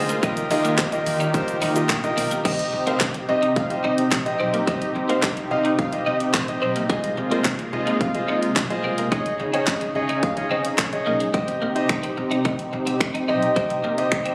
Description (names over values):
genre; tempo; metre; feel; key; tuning
dance-pop; 108 BPM; 4/4; straight; unclear; A4 = 437 Hz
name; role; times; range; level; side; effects
clear concert grand piano; accompaniment; 0.0-14.3 s; Eb4 to Bb5; -28 LUFS; equal; sidechain pumping
lush unison pad; sustained chords; 0.0-14.3 s; C3 to Ab4; -30 LUFS; equal; chorus, phaser, sidechain pumping
twelve-string electric guitar; riff; 0.0-14.3 s; Ab3 to Eb4; -32 LUFS; equal; ensemble chorus
upright bass; bass; 0.0-14.3 s; Bb1 to Eb3; -31 LUFS; equal; sidechain pumping
house drum kit; drums; 0.1-14.3 s; crash cymbal, finger snaps, handclaps, hi-hat, kick drum, shaker, snare drum; -26 LUFS; equal; none
fat analog lead; melody; 2.5-11.2 s; C5 to F5; -30 LUFS; equal; sidechain pumping, tape echo
room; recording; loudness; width
light reverb; recorded on a phone in the room, club reverb, compression; -22 LUFS; mono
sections
0.0-2.5 A section; 2.5-11.3 B section; 11.3-14.3 C section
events
grand piano fill 1.3-2.5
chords
0.2 Ebadd9; 6.9 Ab6/C; 9.1 Dbsus2; 11.3 Cm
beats
| 0.23 0.79 1.34 1.90 | 2.45 3.01 3.56 4.12 | 4.67 5.23 5.79 6.34 | 6.90 7.45 8.01 8.56 | 9.12 9.67 10.23 10.79 | 11.34 11.90 12.45 13.01 | 13.56 14.12